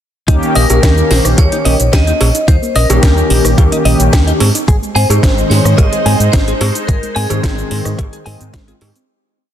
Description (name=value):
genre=nu-disco, nu disco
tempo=109 BPM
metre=4/4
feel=straight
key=Ab major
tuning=A4 = 441 Hz
part: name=mellow synth brass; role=accompaniment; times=0.3-8.9 s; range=Eb3 to G4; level=-17 LUFS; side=equal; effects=chorus, sidechain pumping
part: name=soft round pluck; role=arpeggios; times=0.3-9.1 s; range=G3 to Eb4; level=-25 LUFS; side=right 2 dB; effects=chorus, cassette tape, sidechain pumping, ping-pong delay
part: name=direct-recorded clean electric guitar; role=riff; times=0.3-8.7 s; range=Eb4 to Ab5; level=-22 LUFS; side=left 2 dB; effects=analog chorus, ping-pong delay
part: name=fingered electric bass with an envelope filter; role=bass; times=0.3-8.9 s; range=Ab1 to Ab2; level=-14 LUFS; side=equal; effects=none
part: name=electronic kick drum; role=drums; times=0.3-8.7 s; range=none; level=-11 LUFS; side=equal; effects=overdrive
part: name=house drum kit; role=drums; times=0.3-9.1 s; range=hi-hat, rim click, shaker, snare drum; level=-18 LUFS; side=equal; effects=overdrive
part: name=vibraphone with hard mallets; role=melody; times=0.6-8.2 s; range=Ab4 to Eb5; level=-19 LUFS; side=left 1 dB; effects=ping-pong delay
part: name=cowbell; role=percussion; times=0.7-8.9 s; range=none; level=-23 LUFS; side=right 3 dB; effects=none
part: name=lush unison pad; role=sustained chords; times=4.9-9.0 s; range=Ab3 to C5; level=-23 LUFS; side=right 1 dB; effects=chorus, phaser, sidechain pumping
room=light reverb, digital ambience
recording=dense, heavily limited modern master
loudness=-9 LUFS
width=side -10 dB against mid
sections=0.3-9.1 drop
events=drop 0.3-9.1; fade-out 6.2-9.1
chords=0.3 Eb7; 4.4 Abmaj7